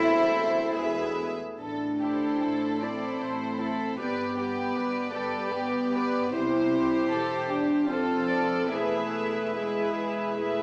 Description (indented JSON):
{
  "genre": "classical, slow romantic movement for symphony orchestra",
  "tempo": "76 BPM",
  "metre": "3/4",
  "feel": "uneven beats, rubato",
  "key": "A minor",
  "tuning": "A4 = 442 Hz",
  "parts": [
    { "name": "warm studio violin section", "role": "melody", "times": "0.0-10.6 s", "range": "G4 to E5", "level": "-37 LUFS", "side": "equal", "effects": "none" },
    { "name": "large flute ensemble", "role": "second line", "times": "0.0-1.1 s", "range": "E5", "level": "-37 LUFS", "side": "equal", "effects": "none" },
    { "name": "mellow clarinet", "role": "second line", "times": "0.0-1.2 s", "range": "E5", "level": "-33 LUFS", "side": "equal", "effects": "none" },
    { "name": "warm studio violin section", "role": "second line", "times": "0.0-10.6 s", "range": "A4 to E5", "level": "-36 LUFS", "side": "equal", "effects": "none" },
    { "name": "warm studio viola section", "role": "accompaniment", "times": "0.0-10.6 s", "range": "E4 to A4", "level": "-36 LUFS", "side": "equal", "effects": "none" },
    { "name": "dark French horn section", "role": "sustained chords", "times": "0.0-10.6 s", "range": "G3 to E4", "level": "-32 LUFS", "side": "equal", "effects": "none" },
    { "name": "dark studio double bass section", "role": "bass", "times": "0.0-10.6 s", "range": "E1 to E2", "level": "-46 LUFS", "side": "equal", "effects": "none" },
    { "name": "warm studio cello section", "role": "bass", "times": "0.0-10.6 s", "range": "E2 to E4", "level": "-36 LUFS", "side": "equal", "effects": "none" },
    { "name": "warm tuba", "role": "bass", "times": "0.0-1.4 s", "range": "E1", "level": "-40 LUFS", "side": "equal", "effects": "none" }
  ],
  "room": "wet recital hall reverb, RT60 1.5 s",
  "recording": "small speaker sound",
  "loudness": "-28 LUFS",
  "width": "mono",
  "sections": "0.0-1.6 A section; 1.6-10.6 B section",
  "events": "none",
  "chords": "0.0 Am/E; 0.7 E; 1.6 Am; 4.0 G; 6.3 C; 7.9 F; 8.7 E"
}